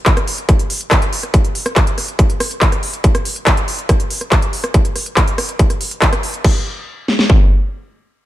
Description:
psychedelic trance; 141 BPM; 4/4; straight
techno drum kit; drums; 0.1-7.4 s; kick drum, snare drum; -13 LUFS; equal; distortion, studio reverb
techno drum kit; drums; 0.1-6.5 s; crash cymbal, handclaps, hi-hat, rim click; -19 LUFS; equal; overdrive, studio reverb
digital ambience; -13 LUFS; side -14 dB against mid
0.0-6.4 A section; 6.4-8.3 B section

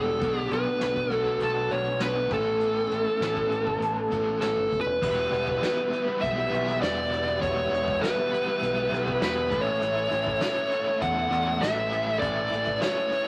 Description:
psychedelic rock; 100 BPM; 4/4; straight; E dorian; A4 = 440 Hz
fuzz lead guitar; melody; 0.0-13.3 s; A4 to F#5; -28 LUFS; equal; distortion
mellow tonewheel organ; sustained chords; 0.0-13.3 s; G3 to E5; -40 LUFS; equal
crunchy overdriven guitar; riff; 0.0-13.3 s; E2 to A4; -34 LUFS; equal; tremolo
growling fingered electric bass; bass; 0.0-12.8 s; E1 to E2; -36 LUFS; equal; overdrive
soft brush drum kit; drums; 0.2-13.3 s; crash cymbal, hi-hat, kick drum, snare drum; -37 LUFS; equal
wet studio reverb, RT60 0.7 s; vinyl crackle; -26 LUFS; mono
0.0-5.0 A section; 5.0-13.3 B section
0.2 Bm7; 2.3 Aadd9; 5.0 Em; 9.5 A

